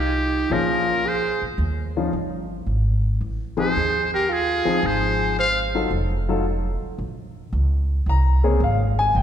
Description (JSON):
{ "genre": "jazz, small-group swing and bop", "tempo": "111 BPM", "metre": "4/4", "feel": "swing 68% on 8ths", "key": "unclear", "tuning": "A4 = 440 Hz", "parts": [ { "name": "trumpet with metal mute", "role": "melody", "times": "0.0-5.6 s", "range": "G4 to F5", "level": "-23 LUFS", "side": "left 1 dB", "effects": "none" }, { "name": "breathy alto saxophone", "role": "second line", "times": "0.0-5.7 s", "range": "Eb4 to C5", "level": "-26 LUFS", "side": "right 3 dB", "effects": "none" }, { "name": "upright bass", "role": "bass", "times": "0.0-9.2 s", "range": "F1 to Fb2", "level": "-23 LUFS", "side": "equal", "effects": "none" }, { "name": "warm baby grand piano", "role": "accompaniment", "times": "0.5-9.2 s", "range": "Db3 to Bb5", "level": "-24 LUFS", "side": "left 3 dB", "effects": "none" } ], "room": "moderate concert hall reverb, RT60 2.0 s", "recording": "recorded in a church or concert hall", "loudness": "-19 LUFS", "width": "side -9 dB against mid", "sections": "0.0-7.0 A section; 7.0-9.2 B section", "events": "none", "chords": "0.0 F7sus2 (rootless); 0.5 Bbm7; 1.6 Eb9; 2.7 Ab6; 5.9 F7b9; 7.0 Bbm9" }